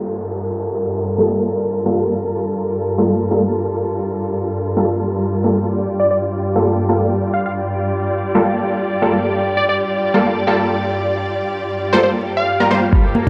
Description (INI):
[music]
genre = breakbeat, breaks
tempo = 134 BPM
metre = 4/4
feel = straight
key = G minor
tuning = A4 = 440 Hz
[part]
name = dark studio string section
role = sustained chords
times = 0.0-13.3 s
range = G2 to D5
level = -22 LUFS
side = equal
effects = vintage 12-bit sampler grit, sidechain pumping, low-pass filter
[part]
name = downlifter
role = sound effects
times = 0.0-2.2 s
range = none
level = -36 LUFS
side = equal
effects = none
[part]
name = orchestra-hit-like synth stab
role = stabs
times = 1.2-12.8 s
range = G3 to C5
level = -20 LUFS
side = equal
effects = built-in reverb, phaser, tape echo
[part]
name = plucky unison lead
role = melody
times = 6.0-12.7 s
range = C5 to F5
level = -22 LUFS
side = equal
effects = phaser, AM radio sound, tape echo
[part]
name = cranked stack guitar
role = riff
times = 12.9-13.3 s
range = G3 to G4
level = -25 LUFS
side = equal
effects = overdrive, low-pass filter, tape echo
[part]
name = breakbeat sampler-style drum kit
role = drums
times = 12.9-13.3 s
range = hi-hat, kick drum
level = -15 LUFS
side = equal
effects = low-pass filter on hats, small room reverb, low-pass filter on kick, low-pass filter on snare
[part]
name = congas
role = percussion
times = 13.2-13.3 s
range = none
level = -19 LUFS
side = equal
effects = none
[sound]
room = moderate plate reverb, RT60 2.0 s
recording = dry, gritty hardware recording, vinyl crackle, low-pass filter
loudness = -18 LUFS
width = mono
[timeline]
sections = 0.0-12.9 A section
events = filter sweep on synth stab 0.0-12.9; filter sweep on string section 0.0-12.9; filter sweep 0.0-12.9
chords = 0.0 Gm9